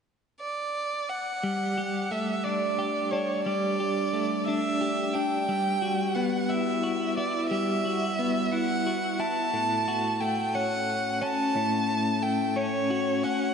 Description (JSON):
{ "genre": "rock", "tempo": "59 BPM (dotted quarters)", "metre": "6/8", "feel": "straight", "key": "G lydian", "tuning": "A4 = 440 Hz", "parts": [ { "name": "bright violin", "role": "melody", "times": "0.4-13.5 s", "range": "C#5 to A5", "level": "-29 LUFS", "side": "right 2 dB", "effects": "ping-pong delay" }, { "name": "twelve-string electric guitar", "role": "arpeggios", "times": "1.4-13.5 s", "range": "A2 to G4", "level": "-27 LUFS", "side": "left 1 dB", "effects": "tremolo, ping-pong delay" } ], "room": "wet huge ambient reverb, RT60 4.1 s", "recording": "dreamy mix soaked in reverb, nothing above 10.7 kHz", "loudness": "-25 LUFS", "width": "side -6 dB against mid", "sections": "0.0-1.4 A section; 1.4-13.5 B section", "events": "none", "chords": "0.0 N.C.; 1.4 Gsus2; 5.5 Emadd9/G; 9.5 A6", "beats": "0.42 | 1.43 2.45 | 3.46 4.48 | 5.49 6.50 | 7.51 8.53 | 9.54 10.55 | 11.56 12.56" }